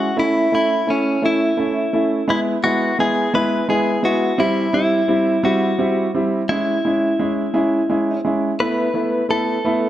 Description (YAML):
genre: pop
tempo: 57 BPM (dotted quarters)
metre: 6/8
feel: straight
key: unclear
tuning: A4 = 440 Hz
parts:
  - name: direct-recorded clean electric guitar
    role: melody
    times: 0.0-9.9 s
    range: C#4 to B4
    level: -20 LUFS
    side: left 1 dB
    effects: none
  - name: clear grand piano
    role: accompaniment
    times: 0.0-9.9 s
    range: G3 to E4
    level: -18 LUFS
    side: right 1 dB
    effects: none
room: moderate plate reverb, RT60 2.6 s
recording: none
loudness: -16 LUFS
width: side -12 dB against mid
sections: 0.0-8.6 A section; 8.6-9.9 B section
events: none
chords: 0.2 A; 2.3 E/G#; 4.4 C; 6.5 C#m; 8.6 Esus4